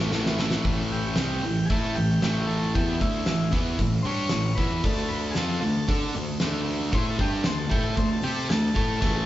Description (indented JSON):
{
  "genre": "garage rock duo or trio",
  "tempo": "115 BPM",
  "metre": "4/4",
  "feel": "straight",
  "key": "unclear",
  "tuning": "A4 = 440 Hz",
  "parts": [
    { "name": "fuzz guitar", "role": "riff", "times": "0.0-9.3 s", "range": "A2 to D5", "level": "-26 LUFS", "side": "equal", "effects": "distortion" },
    { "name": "fuzz picked electric bass", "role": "bass", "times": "0.0-9.3 s", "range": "A1 to D3", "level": "-32 LUFS", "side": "equal", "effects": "overdrive" },
    { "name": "oversized low-tuned drum kit", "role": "drums", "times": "0.1-9.1 s", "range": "crash cymbal, hi-hat, kick drum, snare drum", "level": "-27 LUFS", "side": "equal", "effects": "none" },
    { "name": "overdriven combo organ", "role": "melody", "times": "0.9-9.3 s", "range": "E4 to C#5", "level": "-33 LUFS", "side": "left 2 dB", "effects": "spring reverb" }
  ],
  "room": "moderate large studio reverb, RT60 1.1 s",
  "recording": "band playing live in one room, nothing above 7.7 kHz",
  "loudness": "-22 LUFS",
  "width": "side -14 dB against mid",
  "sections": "0.7-9.3 A section",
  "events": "drum fill 0.0-0.7; transistor combo organ solo 0.7-9.3",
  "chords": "0.0 A5; 0.7 A; 4.8 D5"
}